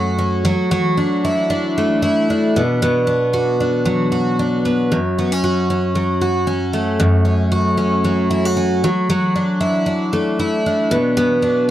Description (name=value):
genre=pop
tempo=115 BPM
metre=4/4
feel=swing 55% on 16ths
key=unclear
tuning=A4 = 436 Hz
part: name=picked twelve-string acoustic guitar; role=solo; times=0.0-11.7 s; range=F#2 to F#4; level=-15 LUFS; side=equal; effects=none
room=light reverb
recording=dry, close 1970s-style studio recording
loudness=-15 LUFS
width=side -12 dB against mid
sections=0.0-11.7 A section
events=none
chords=0.5 Dadd9/F#; 2.5 Bm; 4.9 F#m; 8.8 Dadd9/F#; 10.9 Bm